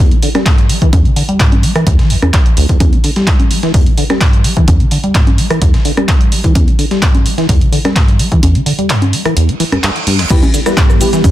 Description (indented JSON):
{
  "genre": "acid house",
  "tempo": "128 BPM",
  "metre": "4/4",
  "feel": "straight",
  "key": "E minor",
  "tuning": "A4 = 440 Hz",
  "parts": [
    { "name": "liquid acid bass", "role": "riff", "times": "0.0-11.3 s", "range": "D2 to G3", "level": "-14 LUFS", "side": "equal", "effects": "phaser, tube saturation, sidechain pumping, digital delay" },
    { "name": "punchy analog drum machine", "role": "drums", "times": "0.1-11.3 s", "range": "cabasa, congas, crash cymbal, handclaps, hi-hat, rim click", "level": "-17 LUFS", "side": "equal", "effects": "none" },
    { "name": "breakbeat sampler-style drum kit", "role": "drums", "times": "0.2-11.3 s", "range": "hi-hat, snare drum", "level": "-27 LUFS", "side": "equal", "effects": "high-pass filter on hats, high-pass filter on snare, high-pass filter on room" },
    { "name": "electronic kick drum", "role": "drums", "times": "0.5-11.3 s", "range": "none", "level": "-11 LUFS", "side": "equal", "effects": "none" },
    { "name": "reverse cymbal", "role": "sound effects", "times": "9.6-10.3 s", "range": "none", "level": "-22 LUFS", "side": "right 6 dB", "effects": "none" },
    { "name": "warbly tape-like pad", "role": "sustained chords", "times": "10.5-11.3 s", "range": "E3 to G4", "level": "-18 LUFS", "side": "right 1 dB", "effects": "chorus, built-in reverb, phaser, sidechain pumping" },
    { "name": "deep mellow chord stab", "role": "stabs", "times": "10.3-11.1 s", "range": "E4 to B4", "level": "-18 LUFS", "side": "left 2 dB", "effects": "chorus, phaser, digital delay" }
  ],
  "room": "digital ambience",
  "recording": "dense, heavily limited modern master",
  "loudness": "-9 LUFS",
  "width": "side -14 dB against mid",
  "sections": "0.0-10.3 A section; 10.3-11.3 B section",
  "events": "kick drops out 8.4-10.3; reverse cymbal 9.6-10.3; band accent 9.8; drop 10.3-11.3",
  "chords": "0.0 Em"
}